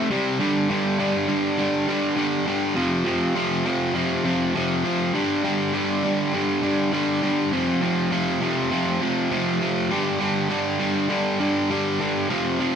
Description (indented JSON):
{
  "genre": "rock",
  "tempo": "101 BPM",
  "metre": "4/4",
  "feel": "straight",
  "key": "unclear",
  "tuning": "A4 = 441 Hz",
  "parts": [
    { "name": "cranked stack guitar", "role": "solo", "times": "0.0-12.8 s", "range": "F2 to G3", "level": "-20 LUFS", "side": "equal", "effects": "overdrive" }
  ],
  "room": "moderate studio reverb, RT60 0.8 s",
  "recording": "band playing live in one room",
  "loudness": "-20 LUFS",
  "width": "side -7 dB against mid",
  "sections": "0.4-12.8 A section",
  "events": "none",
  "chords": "0.4 G5; 2.8 F5; 5.1 G5; 7.5 F5; 9.9 G5"
}